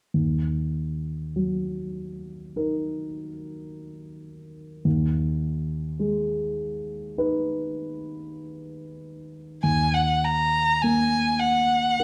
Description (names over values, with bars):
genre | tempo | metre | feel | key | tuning
classical, romantic duo for violin and grand piano | 46-53 BPM | 4/4 | rubato | Eb minor | A4 = 440 Hz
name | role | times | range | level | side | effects
dark concert grand piano | accompaniment | 0.1-12.0 s | Eb2 to Cb5 | -29 LUFS | equal | none
rich violin | melody | 9.6-12.0 s | Gb5 to Bb5 | -24 LUFS | equal | none
room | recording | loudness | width
moderate recital hall reverb, RT60 1.4 s | none | -25 LUFS | mono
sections
0.1-9.6 A section; 9.6-12.0 B section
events
none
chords
0.1 Ebm; 4.9 Abm/Eb; 9.6 Ebm